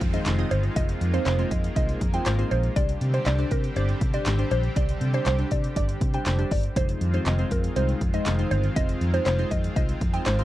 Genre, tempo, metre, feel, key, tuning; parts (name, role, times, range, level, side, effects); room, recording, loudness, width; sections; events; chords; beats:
dance-pop; 120 BPM; 4/4; straight; A4 = 440 Hz
glassy digital keys; accompaniment; 0.0-10.4 s; Ab3 to Eb5; -33 LUFS; equal; chorus, phaser, sidechain pumping
lush unison pad; sustained chords; 0.0-10.4 s; D3 to G4; -33 LUFS; equal; chorus, sidechain pumping
vintage muted fingered electric bass; bass; 0.0-10.4 s; F1 to C3; -25 LUFS; equal; sidechain pumping
punchy analog drum machine; drums; 0.0-10.4 s; handclaps, hi-hat, kick drum, snare drum; -27 LUFS; equal
downlifter; sound effects; 0.0-2.8 s; -47 LUFS; right 2 dB
mallet-like synth pluck; melody; 0.1-10.4 s; Bb4 to G5; -30 LUFS; right 1 dB; chorus, phaser, sidechain pumping, slapback echo
little or no reverb; dry, close 1970s-style studio recording; -22 LUFS; side -15 dB against mid
0.0-10.4 A section
0.0 Fm7; 2.8 Csus2; 6.8 Fm7
0.26 | 0.76 1.26 1.76 2.26 | 2.76 3.26 3.76 4.26 | 4.76 5.26 5.76 6.26 | 6.76 7.26 7.76 8.26 | 8.76 9.26 9.76 10.26